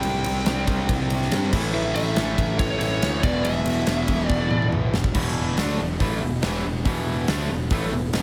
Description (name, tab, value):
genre	hard rock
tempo	141 BPM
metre	4/4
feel	straight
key	E minor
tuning	A4 = 440 Hz
part	biting lead guitar	melody	0.0-4.7 s	C#5 to G5	-31 LUFS	equal	overdrive, analog delay
part	cranked stack guitar	riff	0.0-8.2 s	E2 to D4	-29 LUFS	equal	overdrive
part	fuzz picked electric bass	bass	0.0-8.2 s	E1 to G2	-29 LUFS	equal	overdrive
part	huge arena drum kit	drums	0.0-8.2 s	crash cymbal, hi-hat, kick drum, ride cymbal, snare drum, toms	-27 LUFS	equal	none
room	light reverb, small room ambience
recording	none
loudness	-23 LUFS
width	mono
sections	0.0-5.2 A section; 5.2-8.2 B section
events	drum fill 4.3-5.2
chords	0.0 C5; 1.5 A; 3.2 E5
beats	| 0.04 0.47 0.89 1.32 | 1.74 2.17 2.59 3.02 | 3.45 3.87 4.30 4.72 | 5.15 5.58 6.00 6.43 | 6.86 7.28 7.71 8.14